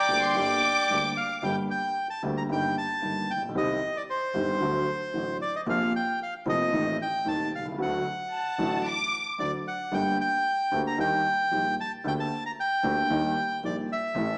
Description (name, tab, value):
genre	tango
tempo	113 BPM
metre	4/4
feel	rubato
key	G minor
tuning	A4 = 440 Hz
part	bandoneon	melody	0.0-14.4 s	C5 to Bb5	-27 LUFS	equal	none
part	warm studio violin section	second line	0.0-1.4, 8.3-9.3 s	A5 to D6	-27 LUFS	equal	none
part	warm grand piano	accompaniment	0.1-14.4 s	Eb1 to A4	-30 LUFS	equal	none
part	clear double bass	bass	0.1-14.4 s	F1 to Eb2	-36 LUFS	equal	none
room	wet stone room reverb, RT60 1.3 s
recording	band playing live in one room, small speaker sound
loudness	-25 LUFS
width	side -37 dB against mid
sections	0.0-1.4 A section; 1.4-14.4 A section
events	none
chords	0.0 Gm; 2.5 Eb/G; 3.6 Cm; 4.6 D; 5.7 Bbsus2; 6.7 Adim; 7.8 D; 9.9 Gmadd9; 11.0 Eb; 12.0 Gmadd9/D; 13.1 Eb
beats	0.35 0.89 | 1.43 1.96 2.50 3.03 | 3.56 4.09 4.62 5.14 | 5.67 6.20 6.73 7.26 | 7.79 8.32 8.85 9.39 | 9.92 10.46 10.98 11.52 | 12.05 12.57 13.10 13.63 | 14.15